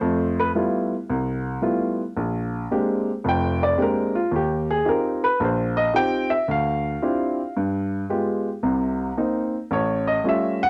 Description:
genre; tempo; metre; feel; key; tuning
solo jazz; 112 BPM; 4/4; swing 67% on 8ths; unclear; A4 = 440 Hz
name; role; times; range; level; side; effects
warm baby grand piano; solo; 0.0-10.7 s; F1 to G5; -23 LUFS; equal; cassette tape
room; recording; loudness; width
moderate studio reverb, RT60 0.6 s; home recording on cassette; -23 LUFS; mono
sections
0.0-10.7 A section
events
grand piano solo 0.0-10.7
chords
0.0 Fmaj9#11; 2.2 Bb13; 4.3 Eb69; 6.5 Dm11; 7.6 G7b9; 8.6 Cm7; 9.7 A7b13

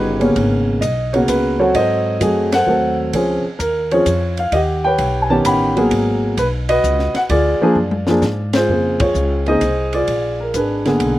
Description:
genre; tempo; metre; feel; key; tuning
jazz piano trio; 130 BPM; 3/4; swing 68% on 8ths; unclear; A4 = 440 Hz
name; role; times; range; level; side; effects
dark grand piano; melody; 0.0-11.2 s; Db3 to B5; -15 LUFS; equal; none
upright bass; bass; 0.0-11.2 s; G1 to Ab2; -21 LUFS; equal; none
compact cocktail drum kit; drums; 0.2-11.2 s; hi-hat, kick drum, ride cymbal, snare drum, toms; -27 LUFS; equal; none
room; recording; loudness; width
little or no reverb; recorded outdoors, with no room sound; -14 LUFS; side -15 dB against mid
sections
0.0-8.7 A section; 8.7-11.2 B section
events
band accent 2.4, 8.5, 8.9; drum fill 7.8-8.7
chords
0.4 Abm11; 1.7 Ab7b9; 3.1 Dbmaj7; 4.5 Eb7alt; 5.9 Abm9; 7.3 Bb7 (rootless); 8.7 Bbm9; 10.1 Bb7b9

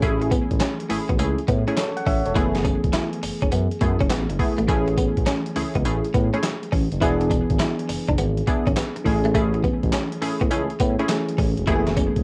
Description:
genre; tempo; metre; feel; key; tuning
R&B, new jack swing; 103 BPM; 4/4; swing 66% on 16ths; A major; A4 = 442 Hz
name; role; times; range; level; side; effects
FM electric piano; accompaniment; 0.0-12.2 s; E3 to F#5; -29 LUFS; equal; chorus, cassette tape
direct-recorded clean electric guitar; riff; 0.0-12.1 s; A3 to E4; -30 LUFS; equal; ensemble chorus, cassette tape
funky polysynth comp; stabs; 0.0-12.0 s; A3 to G#4; -30 LUFS; equal; chorus, cassette tape, tape echo
smooth synth bass; bass; 0.0-12.2 s; E1 to A2; -28 LUFS; equal; none
boom bap sampler-style drum kit; drums; 0.0-12.2 s; handclaps, hi-hat, kick drum, snare drum, tambourine; -27 LUFS; equal; none
room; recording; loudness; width
moderate small room reverb, RT60 0.5 s; home recording on cassette; -22 LUFS; mono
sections
0.0-12.2 A section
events
none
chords
0.0 Amaj7; 7.0 E7; 9.1 Amaj7; 11.7 F#m11

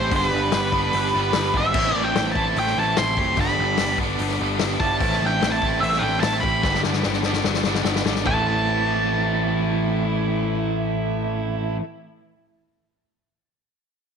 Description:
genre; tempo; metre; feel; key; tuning
classic rock; 147 BPM; 4/4; straight; A minor; A4 = 440 Hz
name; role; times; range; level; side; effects
octave-fuzz lead guitar; melody; 0.0-11.8 s; B4 to C6; -23 LUFS; right 1 dB; distortion
octave-fuzz lead guitar; second line; 0.0-11.8 s; G3 to A4; -31 LUFS; right 12 dB; distortion
crunchy overdriven guitar; riff; 0.0-11.8 s; G2 to E4; -28 LUFS; right 13 dB; tremolo
overdriven electric guitar; riff; 0.0-11.8 s; G2 to E4; -27 LUFS; left 12 dB; none
growling picked electric bass; bass; 0.0-11.8 s; F#1 to A1; -27 LUFS; equal; overdrive
vintage drum kit; drums; 0.1-8.4 s; china cymbal, crash cymbal, hi-hat, kick drum, snare drum, toms; -26 LUFS; left 5 dB; none
room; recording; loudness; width
light reverb, small room ambience; 1960s-style stereo with parts hard left and right; -19 LUFS; side -7 dB against mid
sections
0.0-8.3 A section; 8.3-11.5 B section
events
drum fill 6.6-8.3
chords
0.1 G; 1.7 Am; 3.4 G; 5.0 Am; 6.6 G; 8.3 Am

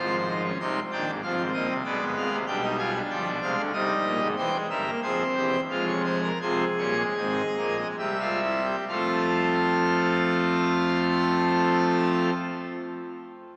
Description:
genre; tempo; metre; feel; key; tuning
classical, baroque-style 4-part fugue for pipe organ; 64-96 BPM; 3/4; straight; unclear; A4 = 440 Hz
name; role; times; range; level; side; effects
pipe organ, full organ; solo; 0.0-12.3 s; E1 to C6; -26 LUFS; equal; none
room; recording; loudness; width
wet church reverb, RT60 4.0 s; small speaker sound; -26 LUFS; mono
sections
0.0-8.9 A section; 8.9-13.6 B section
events
slowing down 3.4-8.9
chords
0.0 Fm/Ab; 0.6 Cm; 1.9 Bdim7; 2.5 G7/B; 3.7 Cm; 4.4 C/E; 5.7 Fm; 8.0 C; 8.9 F

